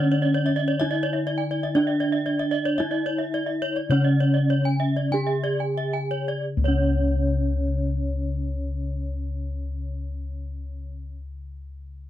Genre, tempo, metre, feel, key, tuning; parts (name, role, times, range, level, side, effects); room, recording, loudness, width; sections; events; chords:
Balinese gamelan; 43-69 BPM; 4/4; straight; A4 = 441 Hz
gamelan-type bronze metallophone; melody; 0.0-11.1 s; C#4 to G#4-45c; -26 LUFS; right 1 dB; plate reverb
gamelan-type bronze metallophone; arpeggios; 0.0-11.1 s; C#5 to G#5-45c; -32 LUFS; right 6 dB
gamelan-type bossed gongs; bass; 0.0-11.0 s; C#2 to D4; -25 LUFS; left 1 dB
gamelan-type bronze metallophone; arpeggios; 0.1-11.1 s; C#5 to G#5-45c; -30 LUFS; left 4 dB
light reverb; dark, warm production; -22 LUFS; side -12 dB against mid
0.0-6.4 A section; 6.4-12.0 B section
slowing down 0.0-6.4